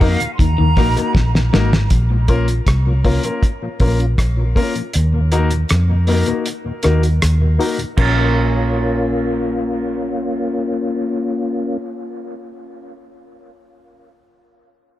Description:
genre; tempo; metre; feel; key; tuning
dub reggae; 79 BPM; 4/4; straight; Bb minor; A4 = 440 Hz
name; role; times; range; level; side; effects
silver concert flute; melody; 0.0-1.5 s; F5 to C6; -25 LUFS; right 4 dB; dub echo
mellow tonewheel organ; accompaniment; 0.0-11.8 s; Eb2 to Gb4; -24 LUFS; left 2 dB; chorus vibrato, slow rotary speaker, low-pass filter, dub echo
warm grand piano; stabs; 0.0-12.5 s; Bb3 to Bb4; -23 LUFS; left 4 dB; low-pass filter, dub echo
vintage muted fingered electric bass; bass; 0.0-12.5 s; Ab1 to F2; -16 LUFS; equal; none
cloth-damped thuddy drum kit; drums; 0.0-8.2 s; crash cymbal, hi-hat, kick drum, rim click, snare drum; -18 LUFS; equal; none
electric guitar at the edge of break-up; riff; 0.4-1.8 s; Ab2 to Eb3; -26 LUFS; left 6 dB; none
electric guitar at the edge of break-up; accompaniment; 8.0-12.5 s; Bb3 to Bb4; -25 LUFS; right 7 dB; low-pass filter, dub echo
room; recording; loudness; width
small room ambience; none; -14 LUFS; side -14 dB against mid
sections
0.0-1.9 A section; 1.9-8.0 B section; 8.0-11.0 C section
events
break 0.0-1.9; drum fill 1.1-1.9; filter sweep 1.9-8.0; kick muted 4.9-8.0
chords
0.0 Ebm; 1.9 Bbm; 4.9 Ebm; 8.0 Bbm

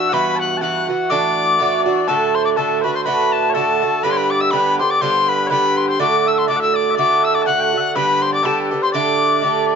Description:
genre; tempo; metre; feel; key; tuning
celtic folk; 122 BPM; 2/4; swing 55% on 8ths; D mixolydian; A4 = 438 Hz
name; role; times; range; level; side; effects
bright reedy wooden whistle; melody; 0.0-9.7 s; A5 to F#6; -18 LUFS; left 2 dB; slapback echo
mellow small bagpipes; second line; 0.0-9.8 s; A4 to A5; -22 LUFS; left 6 dB; none
Irish bouzouki; accompaniment; 0.0-9.8 s; G2 to G4; -18 LUFS; right 5 dB; none
room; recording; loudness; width
moderate studio reverb, RT60 0.7 s; nothing above 7.6 kHz; -14 LUFS; side -6 dB against mid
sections
0.0-2.1 A section; 2.1-9.8 B section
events
none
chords
0.1 Emadd9; 1.1 Dadd9; 2.1 D; 4.0 G; 6.0 D; 8.0 G; 8.9 Dsus4

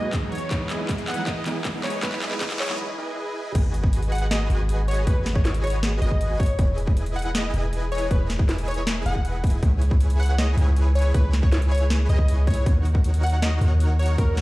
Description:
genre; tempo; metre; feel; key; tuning
future bass; 158 BPM; 4/4; half-time; G# minor; A4 = 440 Hz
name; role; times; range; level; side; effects
plucky unison lead; melody; 0.0-14.3 s; A#4 to F#5; -31 LUFS; equal; sidechain pumping, digital delay
glassy digital keys; accompaniment; 0.0-2.8 s; E3 to D#4; -33 LUFS; right 2 dB; chorus, sidechain pumping, dub echo
ethereal airy pad; sustained chords; 0.0-2.8 s; E3 to D#5; -41 LUFS; left 1 dB; none
dense compressed supersaw; riff; 0.0-14.4 s; D#4 to G#5; -32 LUFS; right 1 dB; sidechain pumping, low-pass filter, dub echo
riser; sound effects; 0.0-2.8 s; none; -37 LUFS; right 1 dB; none
electronic kick drum; drums; 0.1-14.3 s; none; -21 LUFS; equal; overdrive
trap drum kit; drums; 0.1-14.4 s; crash cymbal, handclaps, hi-hat, snare drum; -30 LUFS; equal; overdrive
long sustained 808-style bass; bass; 3.5-14.4 s; E1 to D#2; -22 LUFS; equal; tube saturation, sidechain pumping
room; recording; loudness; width
digital ambience; played on a big sound system in a bare room, large studio reverb, high-pass filter; -20 LUFS; side -19 dB against mid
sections
0.0-3.5 A section; 3.5-14.4 B section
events
build-up 0.0-3.5; drum fill 0.0-2.8; riser 0.0-2.8; filter sweep 0.0-3.5; break 2.8-3.5; drop 3.5-14.4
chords
0.3 Emaj7; 3.5 G#m7; 6.4 Emaj7; 9.6 C#m7; 12.7 D#m7

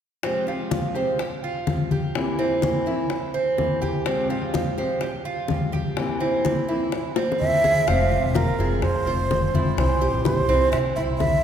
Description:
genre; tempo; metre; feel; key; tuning
latin, Cuban son and guajira; 126 BPM; 4/4; straight; F harmonic minor; A4 = 440 Hz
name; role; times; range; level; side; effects
nylon-string guitar; accompaniment; 0.2-11.4 s; F2 to G4; -28 LUFS; left 2 dB; none
Cuban tres; arpeggios; 0.2-11.4 s; C4 to C5; -26 LUFS; right 3 dB; none
bongos; percussion; 0.2-11.4 s; none; -31 LUFS; left 5 dB; none
congas; percussion; 0.2-11.4 s; none; -28 LUFS; left 2 dB; none
breathy jazz flute; melody; 7.4-11.4 s; Bb4 to F5; -23 LUFS; right 2 dB; none
upright bass; bass; 7.9-11.4 s; E1 to C3; -24 LUFS; equal; none
room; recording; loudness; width
wet church reverb, RT60 3.2 s; recorded in a church or concert hall; -20 LUFS; side -8 dB against mid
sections
0.2-7.9 A section; 7.9-11.4 B section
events
drum fill 7.2-7.9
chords
0.2 Fmadd9; 2.1 C7; 4.1 Fmadd9; 6.0 C7; 7.9 Fm; 9.8 C

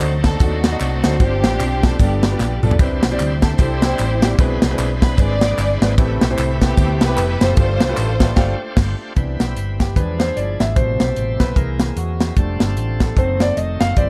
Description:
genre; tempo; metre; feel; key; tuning
uptempo gospel; 151 BPM; 4/4; swing 59% on 8ths; C major; A4 = 440 Hz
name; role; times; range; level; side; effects
clear concert grand piano; accompaniment; 0.0-14.1 s; G2 to F5; -26 LUFS; equal; none
bright tonewheel organ; sustained chords; 0.0-14.1 s; C3 to C5; -32 LUFS; equal; slow rotary speaker, overdrive
hollow-body short-scale fingered electric bass; bass; 0.0-14.1 s; F1 to E2; -23 LUFS; equal; none
tight funk drum kit; drums; 0.0-14.1 s; crash cymbal, hi-hat, kick drum, ride cymbal, snare drum, toms; -19 LUFS; equal; none
handclaps and tambourine; percussion; 0.0-8.3 s; none; -36 LUFS; equal; none
warm studio string section; melody; 0.2-8.8 s; A3 to D5; -26 LUFS; equal; none
room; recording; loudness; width
little or no reverb; dark, warm production; -17 LUFS; mono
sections
0.0-9.2 A section; 9.2-14.1 B section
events
drum fill 2.4-2.8; band accent 8.4-9.2; grand piano solo 9.2-14.1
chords
0.0 D7b9; 1.2 G7sus4; 2.0 G9; 2.8 Cmaj9; 4.4 E7b13/B; 6.0 Am9; 7.6 G9sus4; 9.2 Cmaj7; 10.0 E7b9; 10.8 Am7; 11.6 Caug7; 12.4 F6; 13.2 F#dim7

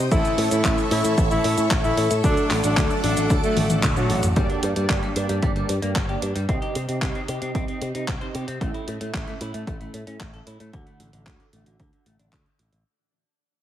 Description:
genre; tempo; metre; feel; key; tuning
italo disco; 113 BPM; 4/4; straight; G harmonic minor; A4 = 437 Hz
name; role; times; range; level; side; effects
string machine, full ensemble; sustained chords; 0.0-4.3 s; A4 to D6; -29 LUFS; left 2 dB; ensemble chorus, shimmer reverb
picked electric bass with an envelope filter; bass; 0.0-12.8 s; G1 to C3; -26 LUFS; equal; tube saturation
breathy alto saxophone; melody; 0.1-4.3 s; F#3 to E4; -25 LUFS; left 1 dB; tape echo, shimmer reverb
mellow synth brass; stabs; 0.1-12.5 s; G2 to A5; -29 LUFS; right 3 dB; chorus, phaser, digital delay, shimmer reverb
electronic kick drum; drums; 0.1-12.4 s; none; -24 LUFS; equal; none
house drum kit; drums; 0.1-12.8 s; cabasa, handclaps, hi-hat, toms; -28 LUFS; equal; none
clean electric guitar; arpeggios; 4.4-12.8 s; D3 to C5; -34 LUFS; left 4 dB; spring reverb, low-pass filter, digital delay, shimmer reverb
room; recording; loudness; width
light reverb; heavily compressed radio sound; -20 LUFS; side -11 dB against mid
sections
0.0-4.4 A section; 4.4-12.9 B section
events
drum fill 3.6-4.4; band accent 3.8; fade-out 4.4-12.9; filter sweep on analog polysynth 4.4-12.9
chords
0.1 A; 2.2 D; 4.4 Gm; 6.5 Cm; 8.6 A; 10.7 D

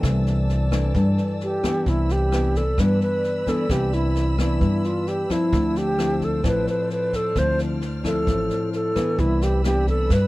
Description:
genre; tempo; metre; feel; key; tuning
bossa nova; 131 BPM; 4/4; straight; C major; A4 = 440 Hz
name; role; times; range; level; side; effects
nylon-string guitar; accompaniment; 0.0-10.3 s; G2 to E4; -24 LUFS; left 2 dB; none
dark studio string section; sustained chords; 0.0-10.3 s; C5 to F6; -36 LUFS; left 1 dB; none
upright bass; bass; 0.0-10.3 s; A1 to G2; -23 LUFS; equal; none
jazz brush drum kit; drums; 0.0-10.2 s; kick drum, rim click, snare drum; -28 LUFS; equal; none
alto flute; melody; 1.4-10.3 s; E4 to C5; -24 LUFS; right 1 dB; none
room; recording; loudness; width
little or no reverb; none; -19 LUFS; side -18 dB against mid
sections
0.0-1.9 A section; 1.9-10.3 B section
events
alto flute solo 0.0-1.9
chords
0.0 C69; 1.9 Cmaj9; 5.5 Dm9; 9.2 Cmaj9

